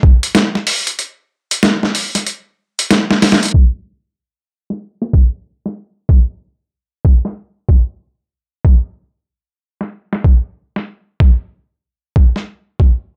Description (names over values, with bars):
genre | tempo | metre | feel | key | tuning
glitch hop | 94 BPM | 4/4 | swing 64% on 16ths | none | none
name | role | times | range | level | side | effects
electronic kick drum | drums | 0.0-13.0 s | none | -11 LUFS | equal | overdrive, studio reverb
boom bap sampler-style drum kit | drums | 0.2-12.5 s | hi-hat, snare drum | -16 LUFS | equal | overdrive, studio reverb
room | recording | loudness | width
light reverb | low-pass filter | -15 LUFS | mono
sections
0.0-3.5 A section; 3.5-13.2 B section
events
drop 0.0-3.5; break 1.0-3.5; drum fill 3.1-3.5; band accent 3.3-3.6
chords
none